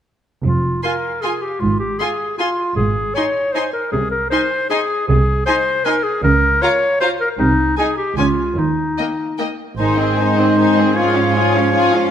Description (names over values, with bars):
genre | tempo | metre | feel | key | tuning
quick classical-period movement for symphony orchestra | 155 BPM | 3/4 | straight | F minor, Ab major from 5.1 s | A4 = 442 Hz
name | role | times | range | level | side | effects
rich studio cello section | bass | 0.4-12.1 s | F2 to Eb3 | -21 LUFS | right 3 dB | none
rich studio double bass section | bass | 0.4-10.2 s | F1 to Eb2 | -21 LUFS | right 2 dB | none
bright clarinet | second line | 0.5-12.1 s | Eb4 to Db5 | -19 LUFS | left 1 dB | none
warm studio violin section | melody | 0.8-12.1 s | Eb5 to C6 | -27 LUFS | left 2 dB | none
rich studio violin section | second line | 0.8-12.1 s | F4 to Ab5 | -26 LUFS | left 1 dB | none
rich studio viola section | accompaniment | 0.8-12.1 s | Bb3 to F4 | -22 LUFS | left 1 dB | none
clear oboe | second line | 9.8-12.1 s | C5 to Db5 | -21 LUFS | right 2 dB | none
mellow bassoon | accompaniment | 9.8-12.1 s | Eb3 to F3 | -23 LUFS | right 2 dB | none
mellow French horn section | sustained chords | 9.8-12.1 s | C4 to F4 | -19 LUFS | left 4 dB | none
room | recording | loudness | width
moderate scoring stage reverb, RT60 1.5 s | none | -15 LUFS | side -9 dB against mid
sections
0.4-9.8 A section; 9.8-12.1 B section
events
none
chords
0.4 Fm; 1.6 Fm/Ab; 2.8 Ab; 3.9 Ab/C; 6.2 Bbm/Db; 7.4 Ab/C; 8.2 Db; 8.6 Eb5; 9.8 Ab; 11.0 Db/Ab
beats
| 0.44 0.83 1.23 | 1.61 2.00 2.39 | 2.78 3.17 3.55 | 3.93 4.32 4.70 | 5.09 5.47 5.86 | 6.24 6.62 7.01 | 7.40 7.78 8.17 | 8.57 8.98 9.39 | 9.79 10.18 10.57 | 10.96 11.34 11.72